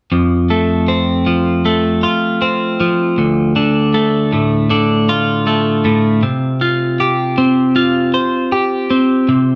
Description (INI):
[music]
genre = rock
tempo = 78 BPM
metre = 4/4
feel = straight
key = unclear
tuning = A4 = 439 Hz
[part]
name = twelve-string electric guitar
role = arpeggios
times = 0.1-9.6 s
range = D2 to C5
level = -14 LUFS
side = equal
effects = none
[sound]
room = wet stone room reverb, RT60 1.0 s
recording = band playing live in one room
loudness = -15 LUFS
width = mono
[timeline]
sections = 0.1-9.6 A section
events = none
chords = 0.1 F; 3.2 Dm; 6.2 Csus4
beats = | 0.12 0.88 1.65 2.41 | 3.17 3.94 4.70 5.47 | 6.23 6.99 7.76 8.52 | 9.28